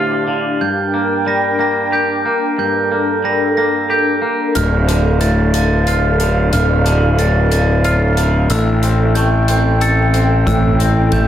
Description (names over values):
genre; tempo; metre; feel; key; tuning
post-rock; 61 BPM (dotted quarters); 6/8; straight; D minor; A4 = 442 Hz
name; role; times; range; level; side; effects
airy breathy pad; sustained chords; 0.0-11.3 s; C4 to G5; -19 LUFS; left 1 dB; chorus
glockenspiel with soft plastic mallets; arpeggios; 0.0-11.3 s; E6 to Bb6; -20 LUFS; right 5 dB; slapback echo
twangy electric guitar; arpeggios; 0.0-11.3 s; D2 to A4; -19 LUFS; left 1 dB; slapback echo
fuzz picked electric bass; bass; 4.6-11.3 s; D1 to A1; -14 LUFS; equal; overdrive
soft-mallet drum kit; drums; 4.6-11.3 s; hi-hat, kick drum; -25 LUFS; left 1 dB; none
room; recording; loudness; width
light reverb, small room reverb; none; -12 LUFS; side -11 dB against mid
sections
0.0-11.3 A section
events
none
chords
0.0 Dm; 0.6 Gm; 4.6 Dm; 8.5 Am7